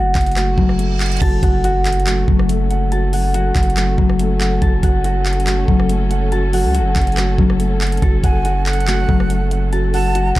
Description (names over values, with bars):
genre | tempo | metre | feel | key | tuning
hip hop, trap | 141 BPM | 4/4 | half-time | F# minor | A4 = 439 Hz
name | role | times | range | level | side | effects
dark grand piano | accompaniment | 0.0-10.4 s | F#3 to F#5 | -24 LUFS | right 2 dB | low-pass filter
concert harp | arpeggios | 0.0-10.4 s | F#3 to A5 | -20 LUFS | left 4 dB | low-pass filter, digital delay
long sustained 808-style bass | bass | 0.0-10.4 s | F#1 to C#2 | -18 LUFS | equal | none
trap drum kit | drums | 0.2-10.4 s | crash cymbal, handclaps, hi-hat, kick drum, rim click | -18 LUFS | equal | none
reverse cymbal and impact | sound effects | 0.6-2.9 s | none | -30 LUFS | right 3 dB | none
dark symphonic string section | sustained chords | 1.2-10.4 s | F#3 to A4 | -27 LUFS | equal | none
breathy jazz flute | second line | 8.2-10.4 s | F#5 to A5 | -26 LUFS | right 6 dB | digital delay
room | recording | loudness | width
studio reverb | dark, warm production | -14 LUFS | side -16 dB against mid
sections
0.0-1.2 A section; 1.2-10.4 B section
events
reverse cymbal 0.6-1.2; impact 1.2-2.9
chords
0.0 F#m